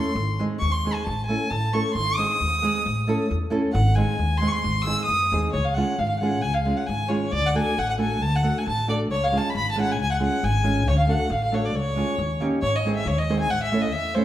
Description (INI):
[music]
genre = balkan folk, Balkan wedding band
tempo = 135 BPM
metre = 2/4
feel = swing 55% on 16ths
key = G# phrygian dominant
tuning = A4 = 441 Hz
[part]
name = warm violin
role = melody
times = 0.0-14.2 s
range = B#4 to E6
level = -25 LUFS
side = equal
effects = none
[part]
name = nylon-string guitar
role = accompaniment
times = 0.0-14.2 s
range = G#3 to C#5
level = -26 LUFS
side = right 1 dB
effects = none
[part]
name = upright bass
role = bass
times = 0.2-14.2 s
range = G#1 to F#2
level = -25 LUFS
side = equal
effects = none
[sound]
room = wet large studio reverb, RT60 1.4 s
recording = band playing live in one room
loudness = -21 LUFS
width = side -12 dB against mid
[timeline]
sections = 0.0-5.5 A section; 5.5-12.6 B section; 12.6-14.2 C section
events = speeding up 0.0-14.2; violin solo 0.0-5.5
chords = 0.2 G#; 1.1 A; 2.0 G#; 2.9 A; 3.8 G#; 5.5 C#; 7.3 D; 9.1 C#; 10.9 D; 11.8 C#; 12.2 D#7; 12.6 G#; 13.5 A